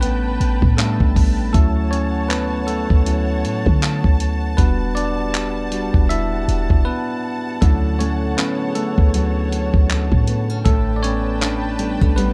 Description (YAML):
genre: contemporary R&B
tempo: 79 BPM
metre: 4/4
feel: swing 58% on 16ths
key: D major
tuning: A4 = 440 Hz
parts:
  - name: bell-like tine electric piano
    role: accompaniment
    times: 0.0-12.3 s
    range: F#3 to E5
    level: -25 LUFS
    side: equal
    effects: none
  - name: dark studio string section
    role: sustained chords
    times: 0.0-12.3 s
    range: G3 to A5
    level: -31 LUFS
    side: equal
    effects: none
  - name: clean 808-style bass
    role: bass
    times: 0.0-12.3 s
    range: E1 to D3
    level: -23 LUFS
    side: equal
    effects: none
  - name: dusty soul sampler-style drum kit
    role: drums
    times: 0.0-12.3 s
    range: handclaps, hi-hat, kick drum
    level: -20 LUFS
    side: equal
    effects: none
  - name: nylon-string guitar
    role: arpeggios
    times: 7.6-12.3 s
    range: A2 to D4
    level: -28 LUFS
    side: equal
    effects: none
room: little or no reverb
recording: dark, warm production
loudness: -18 LUFS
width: mono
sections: 0.0-12.3 A section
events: tine electric piano solo 0.0-12.3; break 6.9-7.6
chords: 0.0 A9sus4; 1.5 Dmaj7; 4.6 Em9; 7.6 Dmaj7; 10.7 A9sus4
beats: 0.02 0.78 | 1.54 2.30 3.06 3.82 | 4.58 5.34 6.10 6.86 | 7.62 8.38 9.14 9.90 | 10.66 11.42 12.18